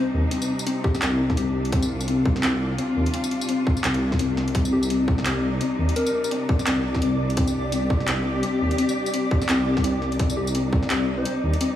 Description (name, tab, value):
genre	half-time drum and bass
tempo	170 BPM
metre	4/4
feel	swing 58% on 16ths, half-time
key	C minor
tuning	A4 = 440 Hz
part	soft struck synth lead	melody	0.0-1.9, 4.7-6.3, 10.4-11.4 s	G4 to C5	-32 LUFS	left 2 dB	chorus, digital delay
part	rich studio cello section	sustained chords	0.0-11.8 s	C3 to G4	-30 LUFS	left 1 dB	sidechain pumping
part	warbly dusty pluck	arpeggios	0.0-11.8 s	C4	-26 LUFS	left 2 dB	chorus, digital delay
part	dark detuned saw bass	bass	0.1-11.5 s	C2 to Eb2	-25 LUFS	equal	none
part	drum and bass drum kit	drums	0.3-11.7 s	handclaps, hi-hat, snare drum, tambourine	-29 LUFS	equal	overdrive, small room ambience
part	electronic kick drum	drums	0.8-10.8 s	none	-22 LUFS	equal	overdrive, small room ambience
part	flickering grainy texture	texture	5.1-11.8 s	D5	-32 LUFS	right 3 dB	built-in reverb
room	light reverb, digital ambience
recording	small room reverb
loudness	-20 LUFS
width	side -11 dB against mid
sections	0.0-11.8 A section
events	none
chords	0.0 Cmadd9